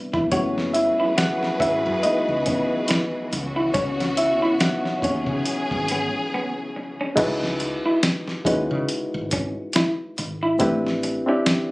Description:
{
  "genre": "R&B, neo-soul",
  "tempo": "70 BPM",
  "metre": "4/4",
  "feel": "swing 56% on 16ths",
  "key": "C# minor",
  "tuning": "A4 = 440 Hz",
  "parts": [
    { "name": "reed electric piano", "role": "accompaniment", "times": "0.0-11.7 s", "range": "E3 to F#5", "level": "-23 LUFS", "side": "equal", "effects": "none" },
    { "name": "electric guitar through a small old amp", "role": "second line", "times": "0.1-11.4 s", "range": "A3 to F#4", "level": "-25 LUFS", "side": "right 1 dB", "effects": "harmonic tremolo" },
    { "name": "woody fretless electric bass", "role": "bass", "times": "0.1-11.2 s", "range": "E1 to C#3", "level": "-30 LUFS", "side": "equal", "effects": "none" },
    { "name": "dusty soul sampler-style drum kit", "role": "drums", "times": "0.1-11.7 s", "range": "crash cymbal, hi-hat, kick drum, snare drum", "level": "-25 LUFS", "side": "equal", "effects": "none" },
    { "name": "warm studio string section", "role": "sustained chords", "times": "0.3-7.2 s", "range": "C#3 to B4", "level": "-28 LUFS", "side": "equal", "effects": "none" }
  ],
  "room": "moderate studio reverb, RT60 0.6 s",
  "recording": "recorded on a phone in the room, studio ambience",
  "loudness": "-20 LUFS",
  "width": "side -22 dB against mid",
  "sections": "0.0-7.2 A section; 7.2-11.7 A section",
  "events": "reed electric piano solo 0.0-7.2; break 6.3-7.2",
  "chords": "0.3 F#m11; 3.3 C#m11; 10.6 Am11",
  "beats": "| 0.32 1.18 2.03 2.89 | 3.75 4.61 5.46 6.32 | 7.18 8.03 8.89 9.75 | 10.61 11.46"
}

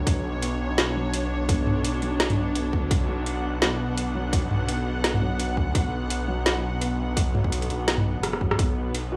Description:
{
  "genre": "half-time drum and bass",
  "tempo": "169 BPM",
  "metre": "4/4",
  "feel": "swing 56% on 16ths, half-time",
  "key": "B minor",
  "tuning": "A4 = 440 Hz",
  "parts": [
    { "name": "dark studio string section", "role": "sustained chords", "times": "0.0-9.2 s", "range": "B2 to F#5", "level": "-33 LUFS", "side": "equal", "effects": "sidechain pumping" },
    { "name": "felt-muted upright piano", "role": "arpeggios", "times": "0.0-9.2 s", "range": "F#3 to F#4", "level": "-34 LUFS", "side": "equal", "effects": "tape echo" },
    { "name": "phased detuned saw bass", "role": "bass", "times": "0.0-9.2 s", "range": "F#1 to D2", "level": "-31 LUFS", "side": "equal", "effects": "phaser" },
    { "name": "drum and bass drum kit", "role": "drums", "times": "0.1-9.0 s", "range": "hi-hat, rim click, snare drum, toms", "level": "-28 LUFS", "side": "equal", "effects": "none" },
    { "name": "electronic kick drum", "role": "drums", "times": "0.1-8.7 s", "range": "none", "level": "-27 LUFS", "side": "equal", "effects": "none" }
  ],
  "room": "digital ambience",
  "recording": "dry, gritty hardware recording, small room reverb",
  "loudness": "-25 LUFS",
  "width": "mono",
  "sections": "0.0-9.2 A section",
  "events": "drum fill 8.2-8.6",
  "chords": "0.0 Bmadd9",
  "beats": "| 0.07 0.42 0.78 1.13 | 1.49 1.84 2.20 2.55 | 2.91 3.26 3.62 3.97 | 4.33 4.68 5.04 5.39 | 5.75 6.10 6.46 6.81 | 7.17 7.52 7.88 8.23 | 8.59 8.94"
}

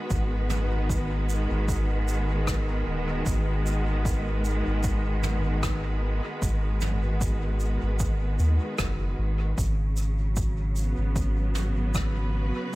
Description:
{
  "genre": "ambient dub",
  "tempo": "76 BPM",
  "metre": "4/4",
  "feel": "swing 55% on 16ths",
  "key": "G# minor",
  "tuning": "A4 = 440 Hz",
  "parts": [
    { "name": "clear symphonic string section", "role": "sustained chords", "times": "0.0-12.8 s", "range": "C#3 to B4", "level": "-31 LUFS", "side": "equal", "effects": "none" },
    { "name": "soft dub sub bass", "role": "bass", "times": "0.1-12.5 s", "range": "D#1 to D#2", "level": "-26 LUFS", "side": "equal", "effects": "tube saturation" },
    { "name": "electronic kick drum", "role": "drums", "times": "0.1-12.1 s", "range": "none", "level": "-30 LUFS", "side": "equal", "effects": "overdrive" },
    { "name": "soft brush drum kit", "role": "drums", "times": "0.1-12.1 s", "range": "rim click, shaker, toms", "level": "-35 LUFS", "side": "right 1 dB", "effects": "dub echo" }
  ],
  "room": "little or no reverb",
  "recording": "none",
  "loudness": "-24 LUFS",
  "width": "side -18 dB against mid",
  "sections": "0.0-12.8 A section",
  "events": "none",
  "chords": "0.0 G#m7; 9.6 F#sus4",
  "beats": "| 0.11 0.90 1.69 2.47 | 3.26 4.05 4.84 5.63 | 6.42 7.21 8.00 8.79 | 9.58 10.37 11.16 11.95 | 12.74"
}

